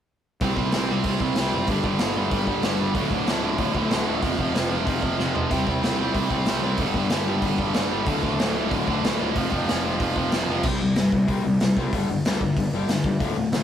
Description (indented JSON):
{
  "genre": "punk rock",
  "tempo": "187 BPM",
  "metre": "4/4",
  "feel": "straight",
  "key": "unclear",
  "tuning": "A4 = 439 Hz",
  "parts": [
    { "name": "distorted electric guitar", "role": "riff", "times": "0.4-13.6 s", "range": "D2 to C4", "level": "-25 LUFS", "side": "left 3 dB", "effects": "distortion" },
    { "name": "tight distorted guitar", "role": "riff", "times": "0.4-10.6 s", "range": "D2 to C4", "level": "-26 LUFS", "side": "right 6 dB", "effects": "distortion" },
    { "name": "fuzz picked electric bass", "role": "bass", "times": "0.4-13.6 s", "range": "D1 to G2", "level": "-30 LUFS", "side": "equal", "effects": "overdrive" },
    { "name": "raw garage drum kit", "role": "drums", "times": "0.4-13.6 s", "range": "crash cymbal, hi-hat, kick drum, snare drum, splash cymbal, toms", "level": "-26 LUFS", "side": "equal", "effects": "none" }
  ],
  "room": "light reverb",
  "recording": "rough rehearsal-room recording",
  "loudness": "-21 LUFS",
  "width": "side -9 dB against mid",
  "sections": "0.4-10.6 A section; 10.6-13.6 B section",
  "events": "drum fill 5.2-5.5",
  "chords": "0.4 C5; 1.7 G5; 3.0 D5; 4.2 F5; 5.5 C5; 6.8 G5; 8.1 D5; 9.4 F5; 10.6 C5; 11.9 G5"
}